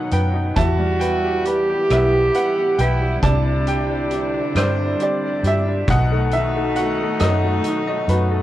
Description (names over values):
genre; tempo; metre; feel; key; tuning
acoustic folk-pop ballad; 45 BPM (dotted quarters); 6/8; straight; E minor; A4 = 440 Hz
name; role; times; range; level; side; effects
bright upright piano; melody; 0.0-8.4 s; B2 to A5; -22 LUFS; left 1 dB; none
warm cello; second line; 0.0-8.4 s; D4 to G4; -22 LUFS; right 2 dB; none
warm studio string section; sustained chords; 0.0-8.4 s; D3 to F#4; -29 LUFS; left 2 dB; none
vintage muted fingered electric bass; bass; 0.1-8.4 s; B1 to G2; -20 LUFS; equal; none
loose indie drum kit; drums; 0.1-8.3 s; hi-hat, kick drum, rim click; -25 LUFS; equal; none
room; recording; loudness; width
little or no reverb; worn, warbling old tape, cassette tape, warbly pitch drift; -17 LUFS; side -13 dB against mid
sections
0.0-8.4 A section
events
none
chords
0.0 B; 0.6 Em; 3.2 Csus2; 5.9 B7